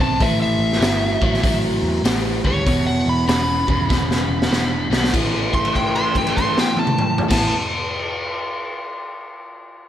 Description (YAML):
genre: blues rock power trio and southern rock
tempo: 97 BPM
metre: 4/4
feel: swing 64% on 8ths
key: A mixolydian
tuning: A4 = 443 Hz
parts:
  - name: overdriven slide guitar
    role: melody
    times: 0.0-7.5 s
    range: C#5 to C6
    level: -23 LUFS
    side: equal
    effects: slapback echo
  - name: overdriven electric guitar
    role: riff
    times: 0.0-7.5 s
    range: E2 to C4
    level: -22 LUFS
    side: equal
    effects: slapback echo
  - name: vintage muted picked electric bass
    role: bass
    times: 0.0-7.5 s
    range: E1 to E2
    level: -24 LUFS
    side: equal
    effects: none
  - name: raw garage drum kit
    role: drums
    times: 0.2-7.4 s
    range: crash cymbal, hi-hat, kick drum, snare drum, toms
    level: -21 LUFS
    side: equal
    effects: none
room: moderate lush hall reverb, RT60 1.9 s, studio reverb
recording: big arena sound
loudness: -17 LUFS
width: side -11 dB against mid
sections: 0.0-5.1 A section; 5.1-7.6 B section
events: drum fill 3.9-5.1; held note 5.1-7.2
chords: 0.2 A5; 2.7 E5; 5.1 A5